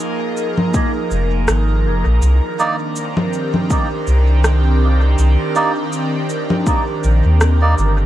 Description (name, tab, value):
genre	ambient dub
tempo	81 BPM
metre	4/4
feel	swing 56% on 16ths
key	unclear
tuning	A4 = 441 Hz
part	airy breathy pad	sustained chords	0.0-8.1 s	Eb3 to Bb4	-20 LUFS	right 1 dB	chorus, phaser
part	electronic cabasa, congas and rim click	drums	0.0-7.9 s	none	-21 LUFS	equal	dub echo
part	electronic kick drum	drums	0.7-6.8 s	none	-18 LUFS	equal	overdrive
part	soft dub sub bass	bass	1.1-8.1 s	F1 to Eb2	-13 LUFS	equal	tube saturation
part	melodica	stabs	2.6-7.7 s	Bb3 to D5	-22 LUFS	right 3 dB	dub echo
room	light reverb, digital ambience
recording	vinyl crackle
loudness	-14 LUFS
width	side -13 dB against mid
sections	0.0-8.1 A section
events	none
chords	0.0 Bb7sus4; 2.2 Cm9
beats	0.00 0.74 1.48 | 2.22 2.96 3.70 4.45 | 5.19 5.93 6.67 7.41